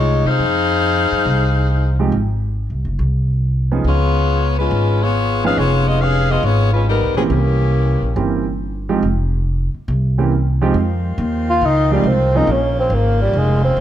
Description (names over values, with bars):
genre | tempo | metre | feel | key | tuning
jazz, big band swing | 139 BPM | 4/4 | swing 68% on 8ths | F minor | A4 = 440 Hz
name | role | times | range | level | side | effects
mellow saxophone section | melody | 0.0-8.1 s | E3 to F5 | -18 LUFS | left 3 dB | none
upright bass | bass | 0.0-13.8 s | F1 to C3 | -17 LUFS | equal | none
warm grand piano | accompaniment | 2.0-12.5 s | E3 to Ab4 | -20 LUFS | right 5 dB | none
bright saxophone section | sustained chords | 10.8-13.8 s | Db3 to F4 | -27 LUFS | equal | none
breathy tenor saxophone | melody | 11.5-13.8 s | G3 to F4 | -16 LUFS | equal | none
room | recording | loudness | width
moderate large studio reverb, RT60 1.2 s | none | -14 LUFS | side -11 dB against mid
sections
0.0-10.8 A section; 10.8-13.8 B section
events
tenor saxophone solo 10.8-13.8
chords
0.0 Fm7; 3.8 Db7; 7.3 C7b9; 9.0 N.C.; 9.9 C7b9; 10.8 Fm7; 12.5 Bbm7